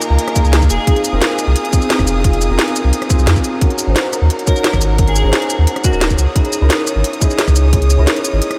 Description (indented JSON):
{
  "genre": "liquid drum and bass",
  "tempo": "175 BPM",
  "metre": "4/4",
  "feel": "straight",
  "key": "unclear",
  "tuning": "A4 = 437 Hz",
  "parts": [
    { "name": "felt-muted upright piano", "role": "accompaniment", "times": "0.0-8.6 s", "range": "Bb3 to C5", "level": "-22 LUFS", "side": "equal", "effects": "lush chorus, diffuse ambient delay" },
    { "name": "warm studio string section", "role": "sustained chords", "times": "0.0-8.6 s", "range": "Ab4 to Eb6", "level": "-26 LUFS", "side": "equal", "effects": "none" },
    { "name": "garage drum kit", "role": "drums", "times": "0.0-8.6 s", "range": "hi-hat, rim click, shaker, snare drum", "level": "-22 LUFS", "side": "equal", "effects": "none" },
    { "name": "warm sub bass", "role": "bass", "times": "0.1-8.4 s", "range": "Eb1 to F2", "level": "-15 LUFS", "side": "equal", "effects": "none" },
    { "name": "electronic kick drum", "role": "drums", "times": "0.4-7.8 s", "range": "none", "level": "-17 LUFS", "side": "equal", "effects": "none" },
    { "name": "airy dreamy lead", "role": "melody", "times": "0.7-1.0, 4.5-6.0 s", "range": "Gb4 to Bb4", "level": "-28 LUFS", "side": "equal", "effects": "chorus, diffuse ambient delay" }
  ],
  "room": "light reverb, digital ambience",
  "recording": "none",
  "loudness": "-14 LUFS",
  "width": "mono",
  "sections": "0.0-8.6 A section",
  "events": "none",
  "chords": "0.0 Gbmaj13 (rootless); 0.7 Fm7; 3.6 Ab9sus4; 6.2 Dbmadd9"
}